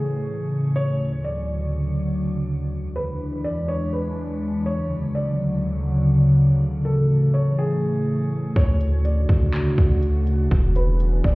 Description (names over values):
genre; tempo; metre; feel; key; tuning
hip hop, atmospheric cloud-rap; 123 BPM; 4/4; half-time; D lydian; A4 = 441 Hz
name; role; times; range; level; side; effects
felt-muted upright piano; melody; 0.0-11.3 s; G#4 to D5; -30 LUFS; equal; low-pass filter, tape echo
warbly tape-like pad; sustained chords; 0.0-11.3 s; D2 to G#4; -21 LUFS; equal; chorus, built-in reverb, phaser, sidechain pumping
long sustained 808-style bass; bass; 8.6-11.3 s; E1 to D2; -19 LUFS; equal; none
trap drum kit; drums; 8.6-11.3 s; handclaps, hi-hat, kick drum; -19 LUFS; equal; none
room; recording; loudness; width
digital ambience; heard muffled through a wall, stone room reverb, EQ; -19 LUFS; side -22 dB against mid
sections
0.0-8.6 A section; 8.6-11.3 B section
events
none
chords
0.0 Amaj7; 0.8 Dmaj7; 2.7 E7; 4.7 Dmaj7; 6.6 Amaj7; 8.6 Dmaj7; 10.5 E7